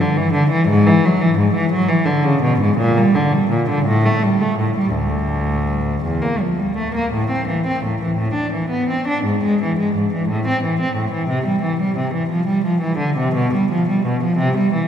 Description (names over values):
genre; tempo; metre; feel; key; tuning
classical, baroque-style suite movement for unaccompanied cello; 54-61 BPM (dotted quarters); 6/8; rubato; A minor from 7.1 s; A4 = 441 Hz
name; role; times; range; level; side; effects
rich cello; solo; 0.0-14.9 s; D2 to D4; -16 LUFS; equal; none
room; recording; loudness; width
wet cathedral reverb, RT60 6.6 s; recorded in a church or concert hall; -16 LUFS; side -8 dB against mid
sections
0.0-7.1 A section; 7.1-14.9 A section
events
none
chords
none